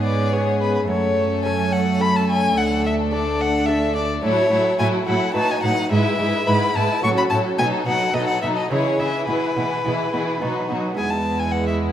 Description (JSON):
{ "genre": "classical, baroque-style concerto movement with solo episodes", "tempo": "107 BPM", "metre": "3/4", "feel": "straight", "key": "E major from 4.2 s", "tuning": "A4 = 440 Hz", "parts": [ { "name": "rich chamber violin section", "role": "melody", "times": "0.0-11.9 s", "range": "E4 to B4", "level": "-30 LUFS", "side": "left 7 dB", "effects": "none" }, { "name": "rich violin", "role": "melody", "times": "0.0-11.8 s", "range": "B4 to C#6", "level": "-23 LUFS", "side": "left 2 dB", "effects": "none" }, { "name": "rich studio violin section", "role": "second line", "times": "0.0-11.9 s", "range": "B3 to E4", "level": "-27 LUFS", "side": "left 1 dB", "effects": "none" }, { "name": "lute", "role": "accompaniment", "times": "0.0-11.9 s", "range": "D2 to B4", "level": "-28 LUFS", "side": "equal", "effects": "none" }, { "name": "warm studio viola section", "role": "accompaniment", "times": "0.0-11.9 s", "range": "E3 to B3", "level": "-25 LUFS", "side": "right 1 dB", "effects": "none" }, { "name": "rich symphonic cello section", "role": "bass", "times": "0.0-11.9 s", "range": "D2 to C#3", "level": "-24 LUFS", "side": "right 2 dB", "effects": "none" } ], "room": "wet recital hall reverb, RT60 1.7 s", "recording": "none", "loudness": "-18 LUFS", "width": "side -10 dB against mid", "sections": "0.0-11.0 A section", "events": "none", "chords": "0.0 C#5/G#; 0.9 F#m; 2.6 D5; 4.2 F#m7/A; 5.3 B7/A; 5.9 E/G#; 7.0 F#m/A; 7.6 B7; 8.7 C#m; 9.3 E/B; 10.4 B; 11.0 E", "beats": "0.33 | 0.89 1.45 2.00 | 2.56 3.11 3.67 | 4.22 4.78 5.34 | 5.91 6.47 7.03 | 7.59 8.15 8.71 | 9.28 9.85 10.42 | 10.98 11.54" }